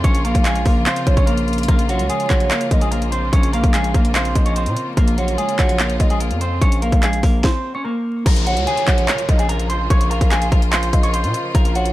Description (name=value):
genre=hip hop, trap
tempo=146 BPM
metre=4/4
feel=half-time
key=Bb minor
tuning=A4 = 439 Hz
part: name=clean electric guitar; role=melody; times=0.0-11.9 s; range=Gb3 to Db6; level=-22 LUFS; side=equal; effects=spring reverb, low-pass filter
part: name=rich symphonic string section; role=sustained chords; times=0.0-11.9 s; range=Db3 to F4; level=-27 LUFS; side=left 2 dB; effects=none
part: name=distorted 808-style bass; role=bass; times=0.0-11.9 s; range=Bb1 to Bb2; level=-20 LUFS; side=equal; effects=distortion
part: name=trap drum kit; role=drums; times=0.0-11.9 s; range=crash cymbal, handclaps, hi-hat, kick drum, snare drum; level=-17 LUFS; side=equal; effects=overdrive
part: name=hollow clarinet-like synth lead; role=second line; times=0.2-11.9 s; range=Db5 to F5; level=-26 LUFS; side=right 4 dB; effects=chorus, ping-pong delay
part: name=downlifter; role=sound effects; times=8.3-11.5 s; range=none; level=-29 LUFS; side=left 2 dB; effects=none
room=little or no reverb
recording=vinyl crackle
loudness=-15 LUFS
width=side -16 dB against mid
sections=0.0-8.3 A section; 8.3-11.9 B section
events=stop 7.4-8.3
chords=0.0 Bbm